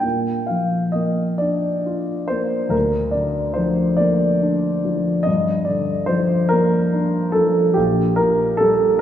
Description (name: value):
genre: classical, romantic nocturne for solo piano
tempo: 42-49 BPM (dotted quarters)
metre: 6/8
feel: rubato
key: Bb major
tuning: A4 = 440 Hz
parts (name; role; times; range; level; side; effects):
- warm concert grand piano; solo; 0.0-9.0 s; Bb1 to G5; -17 LUFS; equal; none
room: wet concert hall reverb, RT60 2.4 s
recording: recorded in a church or concert hall, small room reverb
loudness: -17 LUFS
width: side -10 dB against mid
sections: 0.0-9.0 A section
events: none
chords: 0.0 Bb; 2.7 Bb/D; 5.3 Gm7; 7.8 Gm/Bb